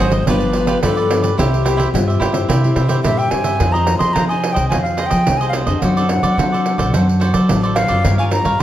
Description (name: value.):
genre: samba and choro.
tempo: 108 BPM.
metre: 4/4.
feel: straight.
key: unclear.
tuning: A4 = 440 Hz.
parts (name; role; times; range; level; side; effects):
breathy mellow polished pan flute; second line; 0.0-3.6 s; E4 to C5; -22 LUFS; left 3 dB; none.
cavaquinho; accompaniment; 0.0-8.6 s; E4 to F5; -23 LUFS; right 4 dB; none.
nylon-string guitar; accompaniment; 0.0-8.6 s; G2 to Bb4; -22 LUFS; left 3 dB; none.
upright bass; bass; 0.0-8.6 s; G1 to F#3; -18 LUFS; equal; none.
pandeiro; percussion; 0.1-8.6 s; none; -21 LUFS; right 3 dB; none.
wooden flute; melody; 3.0-8.6 s; E5 to C6; -19 LUFS; equal; none.
room: moderate recital hall reverb, RT60 1.7 s.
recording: dark, warm production.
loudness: -14 LUFS.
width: side -12 dB against mid.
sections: 0.0-3.6 A section; 3.6-8.6 B section.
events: none.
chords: 0.3 G7; 1.4 C; 3.6 Fm7; 5.8 D7; 8.1 Gm7b5.